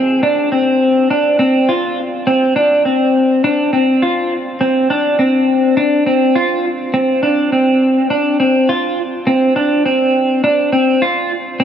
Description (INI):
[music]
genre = dream pop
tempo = 103 BPM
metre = 4/4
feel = straight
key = unclear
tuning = A4 = 440 Hz
[part]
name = clean electric guitar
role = solo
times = 0.0-11.6 s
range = C4 to F4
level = -12 LUFS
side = equal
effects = wide subtle chorus, tape echo
[sound]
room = wet huge ambient reverb, RT60 4.9 s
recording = none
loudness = -12 LUFS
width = side -9 dB against mid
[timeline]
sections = 0.0-9.0 A section; 9.0-11.6 B section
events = none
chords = none